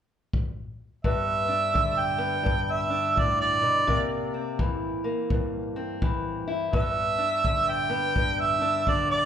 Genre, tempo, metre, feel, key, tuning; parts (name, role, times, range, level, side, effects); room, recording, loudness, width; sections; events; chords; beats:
acoustic country blues, solo or duo; 84 BPM; 4/4; swing 63% on 8ths; A4 = 440 Hz
kick drum; drums; 0.3-9.1 s; -29 LUFS; left 1 dB
mellow harmonica; melody; 1.0-9.3 s; D5 to G5; -24 LUFS; right 3 dB; slapback echo
fingerpicked steel-string acoustic guitar; accompaniment; 1.0-9.3 s; G2 to E4; -29 LUFS; left 3 dB; slapback echo
light reverb, small room ambience; live gig heard through the venue's PA, club reverb; -23 LUFS; side -9 dB against mid
0.0-1.0 A section; 1.0-9.3 B section
harmonica solo 1.0-9.3
0.0 N.C.; 1.0 G; 3.9 C7; 6.7 G
0.33 | 1.04 1.75 2.46 3.17 | 3.88 4.59 5.30 6.01 | 6.73 7.44 8.15 8.87